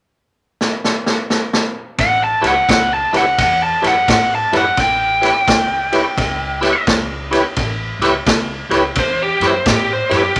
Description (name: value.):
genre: electric blues shuffle.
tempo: 86 BPM.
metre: 4/4.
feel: swing 64% on 8ths.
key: A mixolydian.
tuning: A4 = 439 Hz.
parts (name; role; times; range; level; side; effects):
vintage drum kit; drums; 0.6-10.4 s; kick drum, ride cymbal, snare drum; -20 LUFS; equal; none.
biting lead guitar; melody; 2.0-10.4 s; G4 to A5; -18 LUFS; equal; overdrive.
upright bass; bass; 2.0-10.4 s; A1 to A2; -30 LUFS; equal; none.
bright tonewheel organ; accompaniment; 2.4-10.2 s; E4 to C#5; -19 LUFS; equal; overdrive, chorus vibrato, slow rotary speaker.
room: moderate club reverb, RT60 0.6 s.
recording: none.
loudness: -16 LUFS.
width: mono.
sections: 0.0-2.0 A section; 2.0-10.4 B section.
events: drum fill 0.6-2.0.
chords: 0.0 N.C.; 2.0 A7.